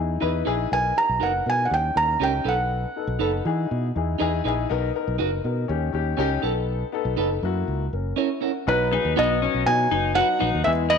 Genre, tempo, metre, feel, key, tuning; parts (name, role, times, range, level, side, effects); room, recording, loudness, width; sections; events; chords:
soul; 121 BPM; 4/4; straight; B major; A4 = 436 Hz
dark upright piano; accompaniment; 0.0-11.0 s; F#3 to F#5; -27 LUFS; left 11 dB
fingered electric bass; bass; 0.0-11.0 s; F#1 to E3; -26 LUFS; right 1 dB
clean electric guitar; stabs; 0.2-10.5 s; C#4 to B4; -29 LUFS; right 12 dB
felt-muted upright piano; melody; 0.7-4.4, 8.7-11.0 s; B4 to A#5; -22 LUFS; right 2 dB
electric guitar through a small old amp; riff; 8.9-11.0 s; B3 to E4; -26 LUFS; left 12 dB
moderate echo chamber reverb, RT60 1.7 s, studio reverb; 1960s-style stereo with parts hard left and right; -21 LUFS; side -6 dB against mid
0.0-8.7 A section; 8.7-11.0 B section
0.0 Emaj7; 0.7 Bmaj7; 1.7 D#7; 2.5 B7; 3.5 Emaj7; 4.7 Bmaj7; 5.7 D#7; 6.4 B7; 7.4 F#7; 8.7 B